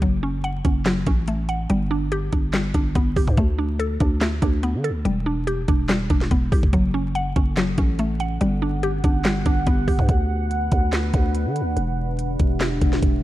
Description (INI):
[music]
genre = hip hop, trap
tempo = 143 BPM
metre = 4/4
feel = half-time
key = F# phrygian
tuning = A4 = 440 Hz
[part]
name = mallet-like synth pluck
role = accompaniment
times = 0.0-10.1 s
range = F#3 to F#5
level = -24 LUFS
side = equal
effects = chorus, low-pass filter
[part]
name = growling 808-style bass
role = bass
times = 0.0-13.2 s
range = E1 to D3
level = -24 LUFS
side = equal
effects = none
[part]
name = trap drum kit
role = drums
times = 0.0-13.1 s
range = handclaps, hi-hat, kick drum, snare drum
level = -21 LUFS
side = equal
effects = vintage 12-bit sampler grit
[part]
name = deep dark ambient pad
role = sustained chords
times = 7.7-13.2 s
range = B3 to F#5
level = -28 LUFS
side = right 1 dB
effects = chorus, built-in reverb
[sound]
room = digital ambience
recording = dark, warm production, vinyl crackle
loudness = -19 LUFS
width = side -15 dB against mid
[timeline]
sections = 0.0-13.2 A section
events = none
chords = 0.0 F#m; 1.7 G; 3.4 D5; 5.1 Em7; 6.7 F#m; 8.4 Gmaj7; 10.1 D6; 11.8 Em7